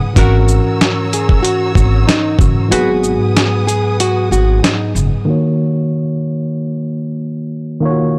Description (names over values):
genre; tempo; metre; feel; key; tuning
hip hop, boom-bap hip-hop; 94 BPM; 4/4; swing 55% on 16ths; unclear; A4 = 440 Hz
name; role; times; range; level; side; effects
tine electric piano; accompaniment; 0.0-8.2 s; G#2 to C#5; -19 LUFS; equal; low-pass filter
warm studio string section; sustained chords; 0.0-5.3 s; B4 to E6; -28 LUFS; equal; none
nylon-string guitar; melody; 0.2-4.9 s; D#4 to G#4; -20 LUFS; equal; delay
clear saxophone section; stabs; 0.2-2.9 s; E4 to B4; -27 LUFS; equal; delay
upright bass; bass; 0.2-5.1 s; F#1 to G#1; -17 LUFS; equal; transformer saturation
dusty soul sampler-style drum kit; drums; 0.2-5.1 s; hi-hat, kick drum, shaker, snare drum; -16 LUFS; equal; none
room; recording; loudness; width
small room ambience; blown-out, overdriven recording, overdrive; -14 LUFS; mono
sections
0.0-5.3 A section; 5.3-8.2 B section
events
kick muted 2.7-5.3; filter sweep on tine electric piano 5.3-8.2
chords
0.2 F#7/G#; 2.7 G#m7; 5.3 D#m7